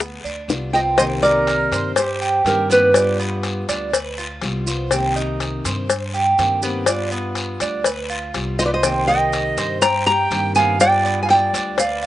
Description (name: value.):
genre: latin, Cuban son and guajira.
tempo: 122 BPM.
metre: 4/4.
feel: straight.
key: C minor.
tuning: A4 = 440 Hz.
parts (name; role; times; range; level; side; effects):
nylon-string guitar; melody; 0.0-3.7, 8.6-12.1 s; Bb4 to Bb5; -17 LUFS; equal; none.
fingerpicked plugged-in steel-string acoustic guitar; accompaniment; 0.0-11.8 s; C3 to G4; -27 LUFS; left 4 dB; none.
Cuban tres; arpeggios; 0.0-12.1 s; B3 to C5; -24 LUFS; right 3 dB; slapback echo.
upright bass; bass; 0.0-12.1 s; C2 to G2; -27 LUFS; equal; none.
bongos and cowbell; percussion; 0.0-12.0 s; none; -22 LUFS; left 6 dB; none.
guiro; percussion; 0.0-12.1 s; none; -31 LUFS; left 3 dB; none.
maracas; percussion; 0.0-12.1 s; none; -28 LUFS; right 6 dB; none.
breathy bright jazz flute; second line; 0.7-3.7, 8.6-12.1 s; G4 to G5; -24 LUFS; right 4 dB; slapback echo.
room: little or no reverb.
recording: recorded outdoors, with no room sound, nothing above 10.5 kHz.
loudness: -16 LUFS.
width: side -14 dB against mid.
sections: 1.0-12.1 A section.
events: none.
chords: 0.0 G7; 1.0 Cm7; 2.9 G7; 4.9 Cm7; 6.9 G7; 8.8 Cm7; 10.8 G7.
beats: 0.00 0.49 | 0.98 1.47 1.97 2.46 | 2.95 3.44 3.93 4.42 | 4.91 5.40 5.89 6.38 | 6.87 7.37 7.86 8.35 | 8.84 9.33 9.82 10.31 | 10.80 11.29 11.78.